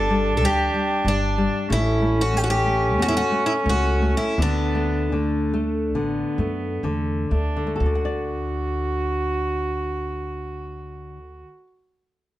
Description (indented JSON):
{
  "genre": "fado-style ballad",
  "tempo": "59-95 BPM",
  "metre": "4/4",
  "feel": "rubato",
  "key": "D major",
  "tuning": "A4 = 440 Hz",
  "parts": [
    { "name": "picked twelve-string acoustic guitar", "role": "melody", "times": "0.0-6.8 s", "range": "D4 to A4", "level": "-24 LUFS", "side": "left 1 dB", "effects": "none" },
    { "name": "rich cello", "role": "second line", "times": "0.0-11.4 s", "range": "A3 to F#4", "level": "-26 LUFS", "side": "right 3 dB", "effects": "none" },
    { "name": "nylon-string guitar", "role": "accompaniment", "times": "0.0-11.7 s", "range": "D3 to F#5", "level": "-27 LUFS", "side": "left 2 dB", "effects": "none" },
    { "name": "upright bass", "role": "bass", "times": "0.0-11.4 s", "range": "G1 to F#2", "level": "-25 LUFS", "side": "equal", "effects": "none" }
  ],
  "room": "moderate studio reverb, RT60 0.6 s",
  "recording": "none",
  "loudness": "-20 LUFS",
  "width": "side -14 dB against mid",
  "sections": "0.0-7.8 A section; 7.8-11.8 B section",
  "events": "slowing down 1.7-7.8",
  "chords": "0.0 G5; 1.7 A; 4.4 D"
}